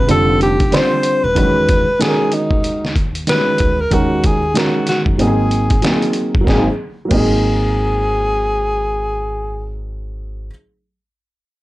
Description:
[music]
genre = hip hop, jazz-hop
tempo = 94 BPM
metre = 4/4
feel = swing 58% on 16ths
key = unclear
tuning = A4 = 440 Hz
[part]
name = clear alto saxophone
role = melody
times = 0.0-9.8 s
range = D#4 to C5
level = -18 LUFS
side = left 1 dB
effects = none
[part]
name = dark upright piano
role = accompaniment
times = 0.0-10.5 s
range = D3 to C5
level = -18 LUFS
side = right 1 dB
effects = none
[part]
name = upright bass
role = bass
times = 0.0-10.5 s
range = Eb1 to F#2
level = -21 LUFS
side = equal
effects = none
[part]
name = trip hop sampler-style drum kit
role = drums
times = 0.1-7.3 s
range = crash cymbal, hi-hat, kick drum, snare drum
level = -18 LUFS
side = equal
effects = vintage 12-bit sampler grit
[sound]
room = light reverb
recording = dry, gritty hardware recording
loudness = -13 LUFS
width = side -17 dB against mid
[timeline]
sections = 0.0-6.5 A section; 6.5-9.0 B section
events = none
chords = 0.1 Fadd9; 1.4 Emaj7; 3.9 D#m7; 5.2 G#7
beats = 0.09 0.73 | 1.37 2.00 2.64 3.28 | 3.92 4.56 5.20 5.83 | 6.47 7.11 7.75 8.39

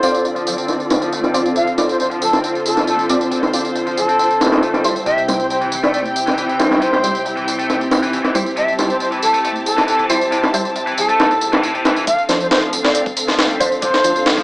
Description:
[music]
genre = breakbeat, breaks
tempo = 137 BPM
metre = 4/4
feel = straight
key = D minor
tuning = A4 = 439 Hz
[part]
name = silver concert flute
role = melody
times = 0.0-14.3 s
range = A4 to F5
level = -19 LUFS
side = equal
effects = old record sound, vintage 12-bit sampler grit, tape echo
[part]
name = muted studio string section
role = sustained chords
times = 0.0-14.4 s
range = D2 to A5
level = -21 LUFS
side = equal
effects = sidechain pumping, low-pass filter
[part]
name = orchestra-hit-like synth stab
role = stabs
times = 0.0-14.1 s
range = F3 to D5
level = -22 LUFS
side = equal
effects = built-in reverb, phaser, cassette tape, tape echo
[part]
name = hollow-body short-scale picked electric bass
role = bass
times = 0.0-12.1 s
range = C2 to D2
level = -43 LUFS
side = equal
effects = low-pass filter
[part]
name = breakbeat sampler-style drum kit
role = drums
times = 0.0-14.4 s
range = hi-hat, kick drum, snare drum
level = -18 LUFS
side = equal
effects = high-pass filter on snare, low-pass filter on snare, studio reverb, high-pass filter on hats, low-pass filter on hats, high-pass filter on kick, low-pass filter on kick
[part]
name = tambourine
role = drums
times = 0.0-14.4 s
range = none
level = -26 LUFS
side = right 1 dB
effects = studio reverb
[part]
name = heavy high-gain guitar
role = riff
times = 0.4-14.4 s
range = A2 to C4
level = -25 LUFS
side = equal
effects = distortion, tube saturation, vintage 12-bit sampler grit, low-pass filter, tape echo
[sound]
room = moderate plate reverb, RT60 1.0 s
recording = vinyl crackle, small speaker sound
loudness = -14 LUFS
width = side -23 dB against mid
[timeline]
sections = 0.0-12.1 A section; 12.1-14.4 B section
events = filter sweep on string section 0.0-12.1; build-up 12.1-14.4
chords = 0.0 Dm7; 5.1 C; 12.1 Dm7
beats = 0.25 0.69 1.12 | 1.56 2.00 2.44 2.88 | 3.31 3.75 4.19 4.63 | 5.07 5.50 5.94 6.38 | 6.82 7.26 7.69 8.13 | 8.57 9.01 9.45 9.88 | 10.32 10.76 11.20 11.64 | 12.07 12.51 12.95 13.39 | 13.83 14.26

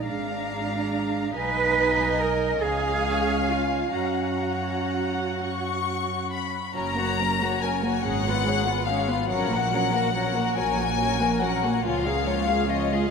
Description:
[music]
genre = classical, slow romantic movement for string orchestra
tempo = 41-49 BPM (dotted quarters)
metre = 6/8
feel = rubato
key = F# major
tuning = A4 = 440 Hz
[part]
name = warm chamber violin section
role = melody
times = 0.0-13.1 s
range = D#5 to C#6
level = -28 LUFS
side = left 7 dB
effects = none
[part]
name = warm chamber violin section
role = second line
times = 0.0-13.1 s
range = E#4 to F#5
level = -30 LUFS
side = left 3 dB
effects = none
[part]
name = rich studio double bass section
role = bass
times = 0.0-13.0 s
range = F#1 to F#2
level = -30 LUFS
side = right 4 dB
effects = none
[part]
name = warm studio cello section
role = bass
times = 0.0-13.0 s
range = C#2 to B4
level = -29 LUFS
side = right 6 dB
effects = none
[part]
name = dark chamber viola section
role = accompaniment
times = 0.1-13.1 s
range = E#3 to E#4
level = -30 LUFS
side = equal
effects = none
[sound]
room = wet cathedral reverb, RT60 5.9 s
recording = in a vast, echoing space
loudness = -22 LUFS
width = side -5 dB against mid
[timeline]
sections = 0.0-6.8 A section; 6.8-13.1 B section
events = none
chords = 0.1 Bb7/Ab; 1.4 G#m/B; 2.6 C#; 3.9 F#; 8.0 C#7/G#; 9.3 F#/A#; 11.8 C#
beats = 0.05 | 1.36 2.60 | 3.94 5.39 | 6.76 8.04 | 9.30 10.56 | 11.84

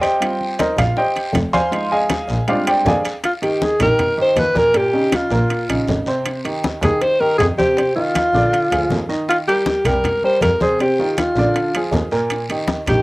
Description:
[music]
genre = Afro-Cuban jazz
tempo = 159 BPM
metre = 4/4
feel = straight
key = Eb major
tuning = A4 = 441 Hz
[part]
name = warm upright piano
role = accompaniment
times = 0.0-13.0 s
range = Bb2 to C6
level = -20 LUFS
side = right 1 dB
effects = cassette tape
[part]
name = bongos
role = percussion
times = 0.0-13.0 s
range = none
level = -29 LUFS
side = left 4 dB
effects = none
[part]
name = congas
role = percussion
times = 0.0-13.0 s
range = none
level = -25 LUFS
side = left 1 dB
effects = none
[part]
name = guiro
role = percussion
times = 0.0-13.0 s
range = none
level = -36 LUFS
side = left 2 dB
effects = none
[part]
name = timbales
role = percussion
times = 0.0-13.0 s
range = none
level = -27 LUFS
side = right 3 dB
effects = none
[part]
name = rich double bass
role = bass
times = 0.8-13.0 s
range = F1 to F2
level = -21 LUFS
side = equal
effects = none
[part]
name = mellow alto saxophone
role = melody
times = 3.2-13.0 s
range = F4 to C5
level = -16 LUFS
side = equal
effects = cassette tape
[sound]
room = light reverb, small room ambience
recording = home recording on cassette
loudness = -15 LUFS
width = side -21 dB against mid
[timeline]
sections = 0.0-3.2 A section; 3.2-13.0 B section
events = upright piano solo 0.0-3.2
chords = 0.2 Eb6; 1.7 Fm7; 2.5 Bb13 (rootless); 3.2 Eb; 4.7 Eb7; 6.3 Abmaj7 (rootless); 7.8 F5; 8.5 Bb7 (rootless); 9.3 Eb; 10.0 C5; 10.8 F5; 11.6 Bb7; 12.3 Eb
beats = | 0.22 0.59 0.97 1.35 | 1.73 2.10 2.48 2.86 | 3.23 3.61 3.99 4.37 | 4.75 5.13 5.50 5.88 | 6.26 6.64 7.02 7.40 | 7.77 8.15 8.53 8.91 | 9.29 9.66 10.04 10.42 | 10.80 11.18 11.55 11.93 | 12.31 12.69

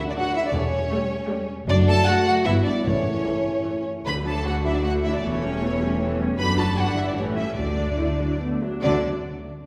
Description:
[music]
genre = quick classical-period movement for symphony orchestra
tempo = 140-160 BPM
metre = 3/4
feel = rubato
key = D major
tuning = A4 = 440 Hz
[part]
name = rich studio violin section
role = melody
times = 0.0-9.1 s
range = C#5 to B5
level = -30 LUFS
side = equal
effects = none
[part]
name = warm studio violin section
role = second line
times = 0.0-9.1 s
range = C#4 to D5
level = -33 LUFS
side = equal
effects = none
[part]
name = warm studio viola section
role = accompaniment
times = 0.0-9.1 s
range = D3 to F#4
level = -33 LUFS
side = equal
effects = none
[part]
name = mellow French horn section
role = sustained chords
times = 0.5-9.0 s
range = G3 to G4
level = -30 LUFS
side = equal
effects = none
[part]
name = rich studio cello section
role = bass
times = 0.5-9.1 s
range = D2 to D3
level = -30 LUFS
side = equal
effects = none
[part]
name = warm studio double bass section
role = bass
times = 0.5-9.1 s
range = E1 to D2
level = -30 LUFS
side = equal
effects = none
[part]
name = timpani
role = percussion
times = 2.9-4.6, 8.8-9.0 s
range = A2 to D3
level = -36 LUFS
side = equal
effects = none
[sound]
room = wet recital hall reverb, RT60 1.8 s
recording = recorded in a church or concert hall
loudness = -23 LUFS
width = mono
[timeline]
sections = 0.0-8.8 A section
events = slowing down 5.8-8.8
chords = 0.0 D; 0.5 A7/E; 1.7 F#m; 2.5 Em7/G; 2.9 A; 4.1 D; 5.2 A7/E; 6.4 D/F#; 6.8 Em7/G; 7.2 A7; 7.6 D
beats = 0.16 | 0.54 0.92 1.30 | 1.68 2.07 2.46 | 2.85 3.25 3.66 | 4.06 4.45 4.84 | 5.23 5.61 5.99 | 6.38 6.76 7.15 | 7.56 7.99 8.41 | 8.83

